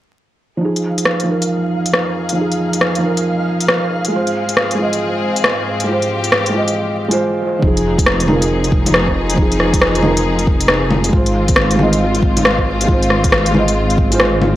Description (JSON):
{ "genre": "future garage", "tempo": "137 BPM", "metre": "4/4", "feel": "swing 64% on 16ths", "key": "F minor", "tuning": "A4 = 440 Hz", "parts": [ { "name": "felt-muted upright piano", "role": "accompaniment", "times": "0.6-14.6 s", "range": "F3 to Eb5", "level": "-18 LUFS", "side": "right 1 dB", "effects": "vintage 12-bit sampler grit, sidechain pumping, low-pass filter, analog delay" }, { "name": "rich studio string section", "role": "sustained chords", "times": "0.6-14.6 s", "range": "F2 to Ab4", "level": "-21 LUFS", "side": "left 2 dB", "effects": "sidechain pumping" }, { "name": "flickering grainy texture", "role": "texture", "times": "0.8-7.2 s", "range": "F5", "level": "-26 LUFS", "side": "right 1 dB", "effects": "built-in reverb" }, { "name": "organic electronic drum kit", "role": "drums", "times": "0.8-14.5 s", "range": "bongos, hi-hat, rim click", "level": "-16 LUFS", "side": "equal", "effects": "none" }, { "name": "swelling detuned saw bass", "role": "bass", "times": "7.6-14.6 s", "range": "F1 to Ab1", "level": "-18 LUFS", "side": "equal", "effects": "sidechain pumping" }, { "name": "electronic kick drum", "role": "drums", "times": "7.6-14.1 s", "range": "none", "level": "-16 LUFS", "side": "equal", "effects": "none" } ], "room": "little or no reverb", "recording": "dry, gritty hardware recording, transformer saturation, vinyl crackle", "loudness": "-13 LUFS", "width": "side -14 dB against mid", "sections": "0.6-7.6 A section; 7.6-14.6 B section", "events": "fade-in on string section 0.6-7.6; filter sweep on felt piano 0.6-7.6", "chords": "0.6 Fm7; 4.1 Ab6; 7.6 Fm7; 11.1 Ab6" }